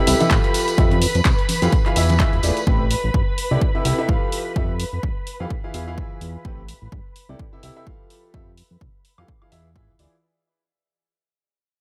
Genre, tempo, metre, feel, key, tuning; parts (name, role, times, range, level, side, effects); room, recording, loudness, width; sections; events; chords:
piano house; 127 BPM; 4/4; swing 57% on 16ths; A4 = 441 Hz
muted studio violin section; sustained chords; 0.0-10.2 s; B4 to B5; -30 LUFS; equal; sidechain pumping, low-pass filter
clear baby grand piano; riff; 0.0-10.1 s; A2 to F5; -27 LUFS; equal; sidechain pumping, delay
fat analog bass; bass; 0.1-10.1 s; E1 to G#2; -24 LUFS; equal; sidechain pumping
punchy analog drum machine; drums; 0.1-10.1 s; handclaps, hi-hat, woodblock; -29 LUFS; equal
tambourine and congas; percussion; 0.1-2.6 s; -29 LUFS; equal
electronic kick drum; drums; 0.3-9.9 s; -23 LUFS; equal
studio ambience; -20 LUFS; mono
0.0-10.2 A section
fade-out 0.0-10.2; filter sweep on analog synth bass 0.0-10.2
0.0 C6; 0.5 Fmaj9; 1.7 E7b9; 2.7 Am9; 3.4 C6; 4.3 Fmaj9; 5.5 E; 6.4 Am9; 7.2 C6; 8.1 Fmaj9; 9.3 E7b9